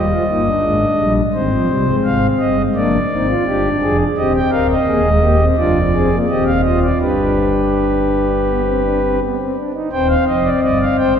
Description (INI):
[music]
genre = classical, baroque-style 4-part fugue for pipe organ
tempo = 84 BPM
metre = 4/4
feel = straight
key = C minor from 4.2 s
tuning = A4 = 440 Hz
[part]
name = pipe organ, principal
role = solo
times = 0.0-11.2 s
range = D1 to G5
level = -13 LUFS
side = equal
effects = none
[sound]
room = wet church reverb, RT60 3.3 s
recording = minimal, uncompressed stereo recording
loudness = -13 LUFS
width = side -8 dB against mid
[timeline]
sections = 0.0-9.9 A section; 9.9-11.2 B section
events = none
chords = 0.0 Eb; 1.3 Abmaj7; 2.8 Ddim/F; 4.2 Cm; 5.6 Fm; 7.0 G; 9.9 Cm/Eb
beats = 0.62 | 1.34 2.05 2.77 3.47 | 4.17 4.88 5.57 6.28 | 7.00 7.73 8.46 9.19 | 9.92 10.63